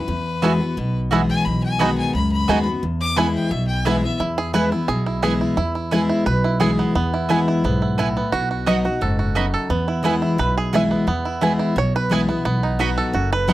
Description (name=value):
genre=bluegrass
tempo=175 BPM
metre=4/4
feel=straight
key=E major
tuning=A4 = 441 Hz
part: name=clear fiddle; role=second line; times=0.0-4.2 s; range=B4 to D6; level=-26 LUFS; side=left 4 dB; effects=none
part: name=picked steel-string acoustic guitar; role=accompaniment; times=0.0-13.5 s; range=E2 to F#4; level=-22 LUFS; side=left 2 dB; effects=none
part: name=upright bass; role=bass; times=0.0-13.5 s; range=F#1 to E2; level=-24 LUFS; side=equal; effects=none
part: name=bluegrass banjo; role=melody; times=0.4-13.5 s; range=B3 to E5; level=-23 LUFS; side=right 4 dB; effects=none
part: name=mandolin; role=stabs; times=0.4-13.5 s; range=B3 to B5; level=-23 LUFS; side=right 4 dB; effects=none
room=light reverb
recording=dry, close 1970s-style studio recording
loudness=-18 LUFS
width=side -15 dB against mid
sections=0.0-4.2 A section; 4.2-13.5 A section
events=fiddle solo 0.0-4.2; five-string banjo solo 4.2-13.5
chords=0.1 Eadd9; 1.5 B6; 2.8 E; 8.3 B; 9.7 E; 12.5 B